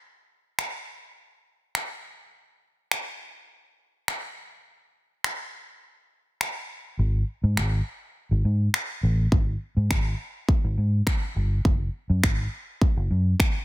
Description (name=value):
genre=dance-pop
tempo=103 BPM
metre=4/4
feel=straight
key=unclear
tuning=A4 = 439 Hz
part: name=pop drum kit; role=drums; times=0.6-13.5 s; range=finger snaps, kick drum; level=-25 LUFS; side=equal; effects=soft clipping on snare
part: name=vintage muted fingered electric bass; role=bass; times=7.0-13.3 s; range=Gb1 to Ab2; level=-22 LUFS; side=equal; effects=sidechain pumping
room=little or no reverb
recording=dense, heavily limited modern master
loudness=-23 LUFS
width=side -18 dB against mid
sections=0.0-13.6 A section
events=none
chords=none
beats=| 0.00 0.58 1.17 1.75 | 2.33 2.91 3.50 4.08 | 4.66 5.24 5.83 6.41 | 6.99 7.57 8.16 8.74 | 9.32 9.90 10.49 11.07 | 11.65 12.23 12.82 13.40